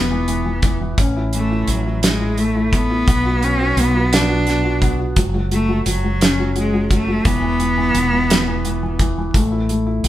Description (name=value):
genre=six-eight pop ballad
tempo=57 BPM (dotted quarters)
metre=6/8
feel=straight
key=unclear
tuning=A4 = 440 Hz
part: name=bright cello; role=melody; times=0.0-9.0 s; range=F#3 to D4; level=-20 LUFS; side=equal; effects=none
part: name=felt-muted upright piano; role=accompaniment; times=0.0-10.1 s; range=E3 to F#4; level=-22 LUFS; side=left 1 dB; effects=none
part: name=mellow fretless electric bass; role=bass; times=0.0-10.1 s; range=E1 to B1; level=-21 LUFS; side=equal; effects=none
part: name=damped 70s drum kit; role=drums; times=0.3-10.1 s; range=hi-hat, kick drum, snare drum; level=-18 LUFS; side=equal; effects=none
room=moderate large studio reverb, RT60 0.9 s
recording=band playing live in one room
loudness=-15 LUFS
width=side -13 dB against mid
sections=0.0-10.1 A section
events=none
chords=0.0 E5; 1.0 A; 3.1 Bm; 5.2 F#5; 7.3 E5; 9.3 A5